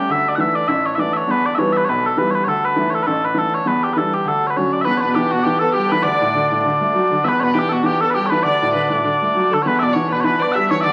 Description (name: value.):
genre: celtic folk.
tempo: 201 BPM.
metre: 4/4.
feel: swing 55% on 8ths.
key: unclear.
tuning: A4 = 440 Hz.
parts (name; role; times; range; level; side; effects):
mellow small bagpipes; melody; 0.0-10.9 s; F#4 to F#5; -20 LUFS; equal; none.
warm upright piano; accompaniment; 0.0-10.9 s; A1 to D4; -23 LUFS; equal; none.
accordion; drone; 0.0-10.9 s; D3 to D4; -30 LUFS; equal; none.
clear fiddle; second line; 4.8-10.9 s; F#4 to E5; -26 LUFS; equal; none.
room: wet large studio reverb, RT60 1.0 s.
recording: very old 78 rpm record, vinyl crackle.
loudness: -18 LUFS.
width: mono.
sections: 0.0-4.9 A section; 4.9-10.9 B section.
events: none.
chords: 0.1 Dsus2; 1.3 Em; 2.5 Dsus2; 3.7 Em7; 4.3 Dmaj7; 4.9 Em; 6.0 D; 7.2 Em; 8.4 D; 9.6 Em.